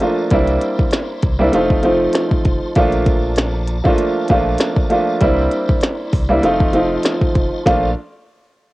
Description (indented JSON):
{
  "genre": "hip hop, boom-bap hip-hop",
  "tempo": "98 BPM",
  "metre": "4/4",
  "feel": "swing 56% on 16ths",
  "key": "Bb major",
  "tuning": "A4 = 440 Hz",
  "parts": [
    { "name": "clear upright piano", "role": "accompaniment", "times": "0.0-7.9 s", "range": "F3 to F4", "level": "-16 LUFS", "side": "right 1 dB", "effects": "high-pass filter, low-pass filter, cassette tape" },
    { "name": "tonewheel organ", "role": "sustained chords", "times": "0.0-7.9 s", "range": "Bb3 to C6", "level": "-32 LUFS", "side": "left 1 dB", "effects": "chorus vibrato, fast rotary speaker, high-pass filter, low-pass filter, cassette tape" },
    { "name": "glitchy drum kit", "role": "drums", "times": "0.0-7.8 s", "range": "hi-hat, kick drum, rim click, snare drum", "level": "-17 LUFS", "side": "equal", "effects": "none" },
    { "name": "sub bass with octave", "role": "bass", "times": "0.3-7.9 s", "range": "F1 to C2", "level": "-22 LUFS", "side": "equal", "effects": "tube saturation" }
  ],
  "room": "little or no reverb",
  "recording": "home recording on cassette",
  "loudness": "-14 LUFS",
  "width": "side -19 dB against mid",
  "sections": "0.0-7.7 A section; 7.7-8.7 B section",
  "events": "none",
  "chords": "0.3 C9; 1.5 F7; 2.8 Bbmaj7; 5.2 C9; 6.4 F7; 7.7 Bbmaj7"
}